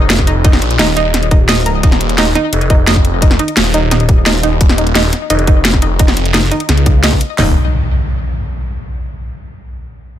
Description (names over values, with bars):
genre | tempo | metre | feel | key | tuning
dark technical drum and bass | 173 BPM | 4/4 | straight | unclear | A4 = 439 Hz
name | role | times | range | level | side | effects
analog pluck | arpeggios | 0.0-7.5 s | Eb4 to Eb5 | -18 LUFS | right 2 dB | chorus, sidechain pumping, ping-pong delay
phased detuned saw bass | bass | 0.0-7.5 s | Eb1 to Db2 | -14 LUFS | equal | phaser, tube saturation
drum and bass drum kit | drums | 0.1-7.3 s | hi-hat, snare drum | -15 LUFS | equal | overdrive, studio reverb
drum and bass drum kit | drums | 0.2-7.5 s | hi-hat, kick drum, snare drum | -10 LUFS | equal | overdrive, studio reverb
impact | sound effects | 7.4-8.8 s | none | -17 LUFS | equal | none
room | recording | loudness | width
little or no reverb | none | -9 LUFS | side -11 dB against mid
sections
0.0-7.4 A section; 7.4-8.8 B section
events
none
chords
0.0 Eb5; 7.4 N.C.